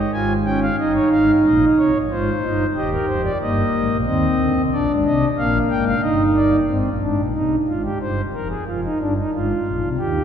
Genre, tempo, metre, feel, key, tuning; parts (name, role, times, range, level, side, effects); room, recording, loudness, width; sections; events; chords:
classical, baroque-style 3-part fugue for pipe organ; 91 BPM; 3/4; straight; Ab major; A4 = 440 Hz
pipe organ, principal; solo; 0.0-10.2 s; Eb1 to Ab5; -17 LUFS; equal
wet cathedral reverb, RT60 4.7 s; heard from further back in the room; -17 LUFS; side -8 dB against mid
0.0-6.7 A section; 6.7-10.2 B section
0.1 Db/Ab; 0.8 Eb7/G; 2.1 Ab; 2.7 Eb; 4.1 Cmadd9; 4.7 Bb7; 6.0 Eb/G; 6.7 Ab; 8.0 Gm; 8.7 Fm